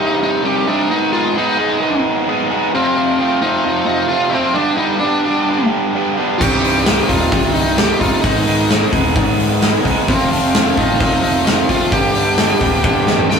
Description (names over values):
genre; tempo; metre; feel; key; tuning
quiet-loud alternative rock; 131 BPM; 4/4; straight; C harmonic minor; A4 = 444 Hz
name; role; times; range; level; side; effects
smooth overdriven lead guitar; melody; 0.0-13.4 s; C4 to G5; -18 LUFS; left 1 dB; none
distorted electric guitar; riff; 0.0-13.4 s; C2 to Ab4; -16 LUFS; right 1 dB; distortion
modern bright picked electric bass; bass; 6.4-13.4 s; C1 to Ab2; -23 LUFS; left 1 dB; none
huge arena drum kit; drums; 6.4-13.4 s; crash cymbal, hi-hat, kick drum, snare drum, toms; -16 LUFS; left 1 dB; none
room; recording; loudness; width
light reverb; rough rehearsal-room recording; -13 LUFS; side -6 dB against mid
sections
0.0-13.4 A section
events
drum fill 12.8-13.4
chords
0.0 Cm; 0.9 Abm; 2.7 F; 4.6 G; 6.4 Cm; 8.2 Abm; 10.1 F; 11.9 G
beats
0.44 | 0.90 1.35 1.81 2.27 | 2.73 3.19 3.65 4.10 | 4.56 5.02 5.48 5.94 | 6.40 6.86 7.32 7.78 | 8.23 8.69 9.15 9.61 | 10.07 10.53 10.99 11.46 | 11.92 12.38 12.84 13.30